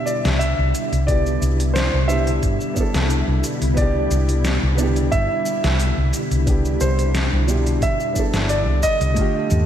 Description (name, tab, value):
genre	sunset chillout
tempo	89 BPM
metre	4/4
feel	swing 53% on 16ths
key	C major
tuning	A4 = 441 Hz
part	warm concert grand piano	melody	0.0-9.7 s	C5 to E5	-24 LUFS	right 1 dB	ping-pong delay, slapback echo
part	dark baby grand piano	accompaniment	0.0-9.7 s	B2 to A4	-26 LUFS	right 2 dB	auto-pan, vintage 12-bit sampler grit, ping-pong delay, slapback echo
part	soft string machine	sustained chords	0.0-9.7 s	B2 to A4	-26 LUFS	left 1 dB	ensemble chorus
part	smooth R&B drum kit	drums	0.1-9.7 s	cabasa, hi-hat, snare drum, toms	-27 LUFS	equal	studio reverb
part	hollow-body short-scale fingered electric bass	bass	0.3-9.7 s	G1 to Eb2	-19 LUFS	equal	none
part	electronic kick drum	drums	1.1-9.3 s	none	-21 LUFS	equal	studio reverb
room	moderate lush hall reverb, RT60 1.9 s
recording	big arena sound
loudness	-17 LUFS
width	side -10 dB against mid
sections	0.0-9.7 A section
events	none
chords	0.0 Cmaj9